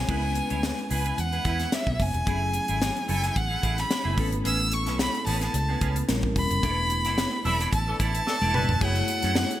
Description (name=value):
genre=polished 1980s jazz-funk pop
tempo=110 BPM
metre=4/4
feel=swing 54% on 16ths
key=F# minor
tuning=A4 = 440 Hz
part: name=bright violin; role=melody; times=0.0-9.6 s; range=E5 to E6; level=-28 LUFS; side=equal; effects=none
part: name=mellow tine electric piano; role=accompaniment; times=0.0-9.6 s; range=F#3 to C#5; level=-33 LUFS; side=left 3 dB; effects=medium stereo tremolo, wide subtle chorus
part: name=vintage muted fingered electric bass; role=bass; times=0.0-9.4 s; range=E1 to F#2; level=-28 LUFS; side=equal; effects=none
part: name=clean electric guitar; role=riff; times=0.1-9.5 s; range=A3 to E5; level=-35 LUFS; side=right 6 dB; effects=ensemble chorus
part: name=crisp fusion drum kit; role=drums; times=0.1-9.6 s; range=crash cymbal, hi-hat, kick drum, snare drum, toms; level=-29 LUFS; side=equal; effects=gated reverb
part: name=congas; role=percussion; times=0.1-9.5 s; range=none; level=-40 LUFS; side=right 5 dB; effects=none
part: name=warm horn section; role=second line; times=7.4-8.7 s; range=E3 to B4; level=-34 LUFS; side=left 2 dB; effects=digital delay
room=light reverb, small room ambience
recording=bright 1980s-style digital production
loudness=-23 LUFS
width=side -13 dB against mid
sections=0.1-8.8 A section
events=band accent 6.6-8.8; drum fill 8.3-8.8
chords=0.1 C#m7; 2.3 F#m9; 4.2 Amaj9; 6.1 A#dim7; 6.6 E7sus4; 8.8 F#m9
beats=| 0.09 0.63 1.18 1.72 | 2.27 2.81 3.36 3.91 | 4.45 5.00 5.54 6.09 | 6.63 7.18 7.72 8.27 | 8.81 9.36